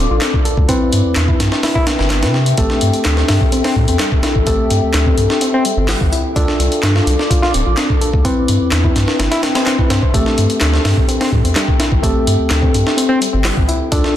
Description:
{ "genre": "breakbeat, breaks", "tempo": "127 BPM", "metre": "4/4", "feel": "straight", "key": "A minor", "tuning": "A4 = 440 Hz", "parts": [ { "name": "dark analog pad", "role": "sustained chords", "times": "0.0-14.2 s", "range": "A4 to D6", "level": "-24 LUFS", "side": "left 4 dB", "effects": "chorus, phaser, sidechain pumping" }, { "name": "barky reed electric piano", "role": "riff", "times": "0.0-14.2 s", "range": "G3 to C5", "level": "-20 LUFS", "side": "left 2 dB", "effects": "tube saturation, ping-pong delay" }, { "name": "tine electric piano", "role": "stabs", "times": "0.0-14.2 s", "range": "C4 to B4", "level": "-22 LUFS", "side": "equal", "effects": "ping-pong delay" }, { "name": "saturated sub bass", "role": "bass", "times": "0.0-14.0 s", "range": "D1 to C3", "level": "-16 LUFS", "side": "equal", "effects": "none" }, { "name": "breakbeat sampler-style drum kit", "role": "drums", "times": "0.2-14.2 s", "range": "hi-hat, kick drum, snare drum", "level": "-16 LUFS", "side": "equal", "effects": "none" }, { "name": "electronic handclaps", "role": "drums", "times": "0.2-13.5 s", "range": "none", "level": "-24 LUFS", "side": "equal", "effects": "none" } ], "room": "light reverb", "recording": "dense, heavily limited modern master, lossy compression artefacts", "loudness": "-12 LUFS", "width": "side -11 dB against mid", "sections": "0.0-14.2 A section", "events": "none", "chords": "0.0 Dm; 0.7 Cmaj7; 2.6 Am7; 6.4 Dm; 8.2 Cmaj7; 10.1 Am7" }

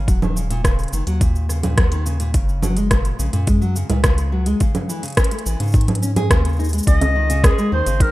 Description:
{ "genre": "folktronica", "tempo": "106 BPM", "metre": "4/4", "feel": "straight", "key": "unclear", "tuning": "A4 = 439 Hz", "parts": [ { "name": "nylon-string guitar", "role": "arpeggios", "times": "0.0-8.1 s", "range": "Bb2 to Ab4", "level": "-24 LUFS", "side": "left 1 dB", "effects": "ping-pong delay" }, { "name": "round analog bass", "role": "bass", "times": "0.0-8.1 s", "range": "Eb1 to Ab2", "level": "-20 LUFS", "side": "equal", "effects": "none" }, { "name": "electronic kick drum", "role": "drums", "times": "0.1-8.1 s", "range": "none", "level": "-16 LUFS", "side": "equal", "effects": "none" }, { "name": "organic electronic drum kit", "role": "drums", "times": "0.1-8.1 s", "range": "cabasa, congas, hi-hat, rim click", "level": "-23 LUFS", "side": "right 1 dB", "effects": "overdrive" }, { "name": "clear clarinet", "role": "melody", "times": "6.9-8.1 s", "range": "Ab4 to Eb5", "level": "-21 LUFS", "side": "equal", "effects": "none" } ], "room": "little or no reverb", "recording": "rough home demo mix", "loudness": "-16 LUFS", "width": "side -17 dB against mid", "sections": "0.0-6.9 A section; 6.9-8.1 B section", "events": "none", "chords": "0.1 Ebm7; 2.3 Gbadd9; 4.6 A; 5.7 Absus4; 6.9 Dbsus2" }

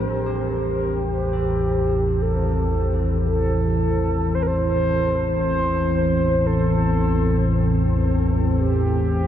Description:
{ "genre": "dark ambient drone", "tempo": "57 BPM", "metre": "4/4", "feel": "straight", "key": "A minor", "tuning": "A4 = 445 Hz", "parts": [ { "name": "dark analog pad", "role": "sustained chords", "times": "0.0-9.3 s", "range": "E3 to C5", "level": "-24 LUFS", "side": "left 1 dB", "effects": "chorus" }, { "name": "analog drone", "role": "drone", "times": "0.0-9.3 s", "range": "A1 to E2", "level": "-22 LUFS", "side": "equal", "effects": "lush chorus" }, { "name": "mellow horn-like synth lead", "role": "melody", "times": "0.1-9.3 s", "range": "G4 to C5", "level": "-24 LUFS", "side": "equal", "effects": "chorus, ping-pong delay" }, { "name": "carillon bells", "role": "arpeggios", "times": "0.3-8.7 s", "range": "C3 to A4", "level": "-40 LUFS", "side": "left 1 dB", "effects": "none" } ], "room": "moderate huge ambient reverb, RT60 8.9 s", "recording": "dreamy mix soaked in reverb", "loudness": "-18 LUFS", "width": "side -10 dB against mid", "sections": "0.1-9.3 A section", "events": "none", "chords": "0.1 Am" }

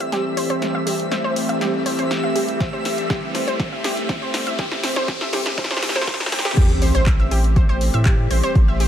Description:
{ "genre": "progressive house", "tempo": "121 BPM", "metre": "4/4", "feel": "straight", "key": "A minor", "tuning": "A4 = 443 Hz", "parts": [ { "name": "evolving wavetable pad", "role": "sustained chords", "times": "0.0-8.9 s", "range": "E3 to G4", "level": "-25 LUFS", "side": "left 1 dB", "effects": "phaser, built-in reverb, sidechain pumping" }, { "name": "wide unison pluck", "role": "arpeggios", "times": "0.0-8.9 s", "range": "G4 to E6", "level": "-25 LUFS", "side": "right 1 dB", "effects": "sidechain pumping, dub echo" }, { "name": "house drum kit", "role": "drums", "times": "0.0-8.9 s", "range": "crash cymbal, handclaps, hi-hat, snare drum", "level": "-26 LUFS", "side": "equal", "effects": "high-pass filter on snare, high-pass filter on hats, high-pass filter on cymbals" }, { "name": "riser and sub drop", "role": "sound effects", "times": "1.0-8.6 s", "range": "none", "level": "-29 LUFS", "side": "equal", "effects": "none" }, { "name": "twinkling granular texture", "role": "texture", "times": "0.0-6.6 s", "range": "E5 to E6", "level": "-32 LUFS", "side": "right 1 dB", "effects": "built-in reverb, sidechain pumping" }, { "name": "electronic kick drum", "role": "drums", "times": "2.6-8.7 s", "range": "none", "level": "-18 LUFS", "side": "equal", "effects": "overdrive" }, { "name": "saturated sub bass", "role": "bass", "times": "6.6-8.9 s", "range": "A1 to A2", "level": "-19 LUFS", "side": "equal", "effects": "sidechain pumping" } ], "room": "light reverb, digital ambience", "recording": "high-pass filter", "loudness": "-18 LUFS", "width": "side -10 dB against mid", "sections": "0.0-6.6 A section; 6.6-8.9 B section", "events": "build-up 0.0-6.6; drum fill 0.0-6.6; filter sweep on synth pluck 0.0-6.6; filter sweep 0.0-6.6; riser 1.0-6.6; drop 6.6-8.9; impact 6.6-8.6", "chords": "0.0 Am7" }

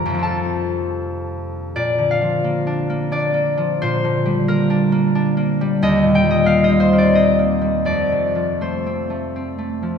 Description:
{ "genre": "classical, solo harp piece", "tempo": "89 BPM", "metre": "3/4", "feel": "uneven beats, rubato", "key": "Bb major", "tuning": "A4 = 440 Hz", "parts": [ { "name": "concert harp", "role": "solo", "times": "0.0-10.0 s", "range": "Eb2 to Bb5", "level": "-16 LUFS", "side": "left 1 dB", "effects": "none" } ], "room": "wet concert hall reverb, RT60 2.2 s", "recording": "minimal, uncompressed stereo recording", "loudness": "-16 LUFS", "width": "side -7 dB against mid", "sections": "0.0-1.8 A section; 1.8-10.0 B section", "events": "none", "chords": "0.0 F; 1.8 Bb; 3.8 Gm/Bb; 5.8 Cm7/Eb; 7.9 F" }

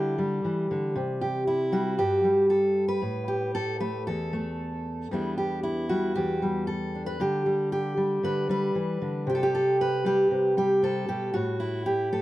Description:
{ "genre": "folk, solo fingerstyle acoustic guitar", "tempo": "116 BPM", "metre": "4/4", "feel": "straight", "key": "unclear", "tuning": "A4 = 440 Hz", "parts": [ { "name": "fingerpicked steel-string acoustic guitar", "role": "solo", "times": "0.0-12.2 s", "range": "E2 to B4", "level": "-24 LUFS", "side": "equal", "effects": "none" } ], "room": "light reverb", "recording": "dry, close 1970s-style studio recording", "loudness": "-24 LUFS", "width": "side -16 dB against mid", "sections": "0.0-12.2 A section", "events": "none", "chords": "0.0 G5/D; 1.0 C; 3.0 Asus2; 5.1 Em7; 7.2 G/D; 9.3 C5; 11.3 N.C." }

